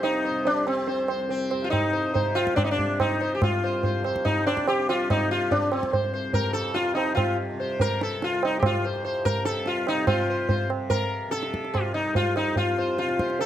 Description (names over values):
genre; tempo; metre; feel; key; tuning
indian classical, Hindustani; 144 BPM; 4/4; straight; C raga bageshri; A4 = 441 Hz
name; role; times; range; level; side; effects
sitar; melody; 0.0-13.5 s; C4 to C5; -25 LUFS; left 1 dB; none
tanpura; drone; 0.0-13.5 s; C2 to C3; -34 LUFS; equal; none
tabla; percussion; 0.0-13.5 s; none; -27 LUFS; right 2 dB; none
room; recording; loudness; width
light reverb; close, detailed microphones; -22 LUFS; side -11 dB against mid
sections
0.0-10.1 A section; 10.1-13.5 B section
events
none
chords
none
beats
| 0.05 0.47 0.89 1.31 | 1.74 2.16 2.58 3.00 | 3.42 3.84 4.26 4.68 | 5.10 5.52 5.93 6.35 | 6.77 7.19 7.60 8.02 | 8.43 8.85 9.27 9.68 | 10.09 10.51 10.92 11.33 | 11.75 12.16 12.57 12.98 | 13.39